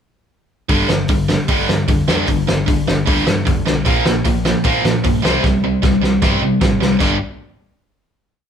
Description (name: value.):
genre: punk rock.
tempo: 153 BPM.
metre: 4/4.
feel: straight.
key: unclear.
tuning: A4 = 441 Hz.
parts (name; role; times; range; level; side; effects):
biting overdriven guitar; riff; 0.7-7.2 s; G2 to C4; -18 LUFS; right 4 dB; none.
distorted electric guitar; riff; 0.7-7.2 s; G2 to C4; -21 LUFS; left 8 dB; overdrive.
overdriven picked electric bass; bass; 0.7-7.2 s; F1 to C3; -24 LUFS; equal; none.
loose indie drum kit; drums; 0.7-7.1 s; crash cymbal, hi-hat, kick drum, snare drum; -18 LUFS; equal; none.
room: moderate studio reverb, RT60 0.8 s.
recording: band playing live in one room.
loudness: -14 LUFS.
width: side -8 dB against mid.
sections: 0.7-7.0 verse; 7.0-8.5 final chord.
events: drum fill 5.4-7.0.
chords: 0.7 G5; 3.9 Bb5; 5.2 C5; 7.0 G5.